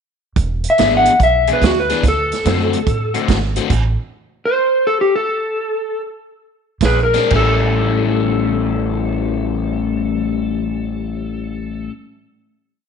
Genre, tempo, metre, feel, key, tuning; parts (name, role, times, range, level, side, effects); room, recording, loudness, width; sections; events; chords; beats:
electric blues shuffle; 116-144 BPM; 4/4; swing 66% on 8ths; A major; A4 = 439 Hz
upright bass; bass; 0.4-3.9, 6.8-11.9 s; E1 to A2; -20 LUFS; right 1 dB
vintage drum kit; drums; 0.4-3.8, 6.8-7.5 s; crash cymbal, hi-hat, kick drum, snare drum; -20 LUFS; right 6 dB
electric slide guitar; melody; 0.7-11.9 s; F#4 to F#5; -17 LUFS; equal
crunchy overdriven guitar; riff; 0.8-3.7, 7.1-11.9 s; A2 to G#4; -20 LUFS; left 9 dB; phaser
moderate echo chamber reverb, RT60 1.3 s, small room ambience; 1960s-style stereo with parts hard left and right, nothing above 10.9 kHz; -15 LUFS; side -6 dB against mid
0.4-7.3 head; 7.3-11.5 final chord
slowing down 3.7-7.3; stop 3.7-6.8
0.4 E7; 2.0 D7; 3.7 N.C.; 6.8 Bb9; 7.3 A7
| 0.37 0.79 1.21 1.62 | 2.04 2.45 2.87 3.29 | 3.70 4.12 4.54 4.97 | 5.41 5.87 6.33 6.82 | 7.32 7.84 8.36 8.88 | 9.39 9.91 10.43 10.94